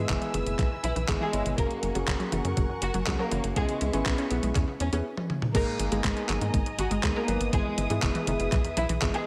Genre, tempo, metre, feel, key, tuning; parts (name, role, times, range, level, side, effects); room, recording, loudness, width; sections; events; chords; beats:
italo disco; 121 BPM; 4/4; straight; G# minor; A4 = 440 Hz
muted studio string section; sustained chords; 0.0-9.3 s; G#4 to E6; -39 LUFS; equal; vintage 12-bit sampler grit
analog pluck; arpeggios; 0.0-9.2 s; E2 to C#4; -37 LUFS; equal; chorus, vintage 12-bit sampler grit, digital delay
dark concert grand piano; stabs; 0.0-9.2 s; G#3 to C#5; -36 LUFS; equal
tight sequencer bass; bass; 0.0-9.1 s; F#1 to G#2; -33 LUFS; equal; tube saturation
clean 12-bit digital drum machine; drums; 0.1-9.2 s; crash cymbal, handclaps, hi-hat, toms; -35 LUFS; equal; studio reverb, gated reverb
electronic kick drum; drums; 0.1-9.1 s; -31 LUFS; equal; studio reverb
warm chamber violin section; melody; 0.8-9.3 s; G#3 to A#4; -36 LUFS; equal; digital delay
moderate lush hall reverb, RT60 1.6 s, digital ambience; -28 LUFS; mono
0.0-5.5 A section; 5.5-9.3 B section
filter sweep on synth arpeggio sound 0.0-5.5; stop 5.0-5.5; drum fill 5.2-5.5
0.0 E; 1.6 F#add9; 3.6 C#m7; 5.5 G#madd9; 7.5 E
0.09 0.59 1.08 | 1.58 2.08 2.57 3.07 | 3.56 4.06 4.55 5.05 | 5.55 6.04 6.54 7.03 | 7.53 8.03 8.52 9.02